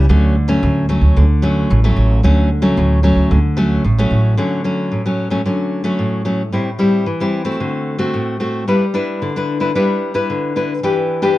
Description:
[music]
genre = samba and choro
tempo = 112 BPM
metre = 4/4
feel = straight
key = D major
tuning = A4 = 440 Hz
[part]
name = nylon-string guitar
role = accompaniment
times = 0.0-11.4 s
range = A2 to B4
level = -16 LUFS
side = left 1 dB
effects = none
[part]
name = upright bass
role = bass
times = 0.0-4.3 s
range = A1 to D2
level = -13 LUFS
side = right 1 dB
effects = none
[sound]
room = light reverb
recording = dark, warm production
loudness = -14 LUFS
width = side -16 dB against mid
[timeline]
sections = 0.0-4.4 A section; 4.4-11.4 B section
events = none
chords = 0.1 Dmaj7; 6.5 Am7; 7.6 D7; 8.7 G6; 10.8 Em7

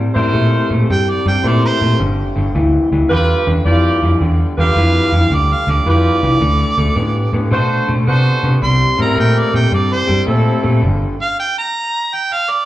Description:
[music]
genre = blues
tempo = 109 BPM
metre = 4/4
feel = swing 66% on 8ths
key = unclear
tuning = A4 = 436 Hz
[part]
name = electric guitar through a small old amp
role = riff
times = 0.0-11.1 s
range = G2 to B3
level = -19 LUFS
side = left 2 dB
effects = spring reverb
[part]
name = bright horn section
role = stabs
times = 0.1-10.8 s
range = C4 to D5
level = -19 LUFS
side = equal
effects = slapback echo
[part]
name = vintage muted fingered electric bass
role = bass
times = 0.2-11.0 s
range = G1 to C3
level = -15 LUFS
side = equal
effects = none
[part]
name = clear harmonica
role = melody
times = 0.9-12.7 s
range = C5 to C6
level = -18 LUFS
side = right 3 dB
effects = overdrive, slapback echo
[sound]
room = studio reverb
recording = live gig heard through the venue's PA, club ambience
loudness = -12 LUFS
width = side -15 dB against mid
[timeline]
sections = 0.0-12.7 A section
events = harmonica solo 0.0-12.7; stop 10.8-12.7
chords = 0.0 C7; 2.0 G7; 6.4 D7; 8.6 C7; 10.8 G5

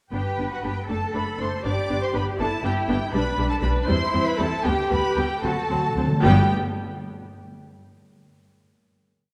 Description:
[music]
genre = quick classical-period movement for symphony orchestra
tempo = 73-82 BPM (dotted quarters)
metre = 6/8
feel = rubato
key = G major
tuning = A4 = 439 Hz
[part]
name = rich studio violin section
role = melody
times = 0.1-6.5 s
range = F#5 to D6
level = -32 LUFS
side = equal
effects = none
[part]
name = warm studio violin section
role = second line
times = 0.1-6.5 s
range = F#4 to D5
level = -31 LUFS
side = equal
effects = none
[part]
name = rich studio viola section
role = accompaniment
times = 0.1-6.5 s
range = F#3 to D4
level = -31 LUFS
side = equal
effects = none
[part]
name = rich studio cello section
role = bass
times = 0.1-6.5 s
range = G2 to B4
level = -31 LUFS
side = equal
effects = none
[part]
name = rich studio double bass section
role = bass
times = 0.1-6.5 s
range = F#1 to E2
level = -29 LUFS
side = equal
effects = none
[part]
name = timpani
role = percussion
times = 5.4-6.5 s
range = G2 to D3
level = -28 LUFS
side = equal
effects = none
[sound]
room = wet concert hall reverb, RT60 2.4 s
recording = none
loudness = -23 LUFS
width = mono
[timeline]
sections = 0.1-6.2 A section; 6.2-7.8 final chord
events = timpani fill 5.4-6.2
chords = 0.1 G; 0.9 D; 1.6 G; 3.9 C; 4.6 G; 5.4 D7; 6.2 G

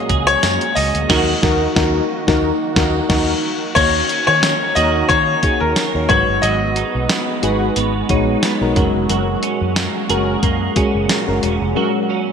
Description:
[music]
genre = 1980s-style pop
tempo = 90 BPM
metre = 4/4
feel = swing 55% on 16ths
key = Eb minor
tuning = A4 = 440 Hz
[part]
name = clear concert grand piano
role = melody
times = 0.0-8.7 s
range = Bb4 to Eb5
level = -18 LUFS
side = left 3 dB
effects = digital delay
[part]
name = FM electric piano with auto-pan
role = accompaniment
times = 0.0-12.3 s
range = Ab3 to Db5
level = -21 LUFS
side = left 3 dB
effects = none
[part]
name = sweeping resonant pad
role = sustained chords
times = 0.0-12.3 s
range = Bb2 to Gb4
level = -27 LUFS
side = right 1 dB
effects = chorus
[part]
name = twelve-string electric guitar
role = riff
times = 0.0-12.3 s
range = Gb3 to Ab4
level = -23 LUFS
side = right 8 dB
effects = ensemble chorus, digital delay
[part]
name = vintage muted fingered electric bass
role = bass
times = 0.1-11.7 s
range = Fb1 to Eb3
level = -22 LUFS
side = equal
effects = none
[part]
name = clean 12-bit digital drum machine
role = drums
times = 0.1-11.6 s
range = crash cymbal, hi-hat, kick drum, snare drum, tambourine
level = -20 LUFS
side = equal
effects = gated reverb
[part]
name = mellow synth brass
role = stabs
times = 1.1-11.9 s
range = Db4 to Cb5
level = -27 LUFS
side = right 2 dB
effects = chorus, phaser, digital delay
[sound]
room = wet plate reverb, RT60 3.2 s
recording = bright 1980s-style digital production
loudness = -14 LUFS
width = side -7 dB against mid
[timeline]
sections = 0.0-3.8 A section; 3.8-12.3 B section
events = band accent 1.1-3.8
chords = 0.0 Gbadd9; 1.1 Ebm; 3.8 Ebm7; 6.1 Abm7; 8.8 Gbadd9

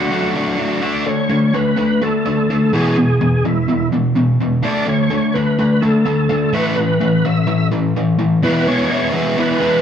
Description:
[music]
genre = rock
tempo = 126 BPM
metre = 4/4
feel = straight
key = unclear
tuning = A4 = 439 Hz
[part]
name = overdriven tonewheel organ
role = melody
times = 0.0-9.8 s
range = E4 to E5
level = -21 LUFS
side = right 1 dB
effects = slow rotary speaker, chorus vibrato
[part]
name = overdriven electric guitar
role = riff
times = 0.0-9.8 s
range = E2 to F#4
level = -15 LUFS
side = left 1 dB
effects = spring reverb
[sound]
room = moderate stone room reverb, RT60 1.1 s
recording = band playing live in one room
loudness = -14 LUFS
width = side -8 dB against mid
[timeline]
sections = 0.8-8.4 A section; 8.4-9.8 B section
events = none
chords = 0.0 D; 0.8 D5; 2.7 E; 4.6 D5; 6.5 Asus2; 8.4 E

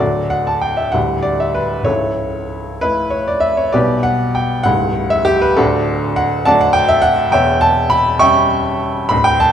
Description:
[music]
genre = classical, romantic character piece for solo piano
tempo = 62-70 BPM (dotted quarters)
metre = 6/8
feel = rubato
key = D major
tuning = A4 = 437 Hz
[part]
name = clear upright piano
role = solo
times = 0.0-9.5 s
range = C#1 to C#6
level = -13 LUFS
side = equal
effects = none
[sound]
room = wet recital hall reverb, RT60 1.7 s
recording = dark, warm production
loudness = -13 LUFS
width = side -9 dB against mid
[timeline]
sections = 0.0-9.5 A section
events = none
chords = 0.0 D; 1.0 Em7/D; 1.9 A/C#; 3.8 G/B; 4.7 A7/C#; 5.6 D; 7.3 C#dim/E

